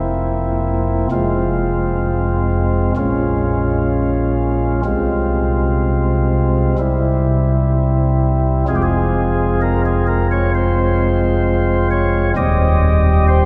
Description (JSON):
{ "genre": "classical, chorale-style piece for pipe organ", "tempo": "64 BPM", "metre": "4/4", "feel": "rubato", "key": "F minor", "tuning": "A4 = 439 Hz", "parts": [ { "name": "pipe organ, flutes", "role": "solo", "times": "0.0-13.5 s", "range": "Eb1 to Eb5", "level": "-16 LUFS", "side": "equal", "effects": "none" } ], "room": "wet cathedral reverb, RT60 4.6 s", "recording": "none", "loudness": "-17 LUFS", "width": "mono", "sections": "0.0-8.7 A section; 8.7-13.5 B section", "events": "none", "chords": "0.0 C7/F; 1.1 Fm; 3.0 Bbm7; 4.8 Fm/C; 6.8 C; 8.7 Fm; 12.4 Cm/Eb", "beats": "0.21 | 1.12 2.03 2.96 3.89 | 4.84 5.82 6.79 7.73 | 8.68 9.61 10.55 11.46 | 12.37 13.28" }